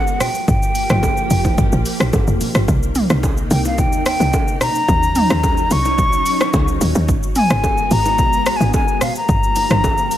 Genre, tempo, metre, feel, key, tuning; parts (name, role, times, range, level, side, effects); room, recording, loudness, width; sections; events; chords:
amapiano; 109 BPM; 4/4; straight; A4 = 437 Hz
hollow concert flute; melody; 0.0-10.2 s; F5 to Db6; -19 LUFS; left 2 dB; ping-pong delay
soft string machine; sustained chords; 0.0-10.2 s; C3 to G4; -24 LUFS; equal; ensemble chorus
deep house drum kit; drums; 0.1-10.2 s; hi-hat, kick drum, rim click, shaker, toms; -19 LUFS; equal; overdrive
congas and bongos; percussion; 0.2-10.0 s; -26 LUFS; right 3 dB
woody log drum bass; bass; 0.5-10.2 s; F1 to Eb2; -19 LUFS; equal
little or no reverb; -14 LUFS; side -12 dB against mid
0.0-10.2 A section
0.2 Gm7; 2.7 Cm7; 4.6 Ebm7; 7.1 Abm7; 9.0 Gm7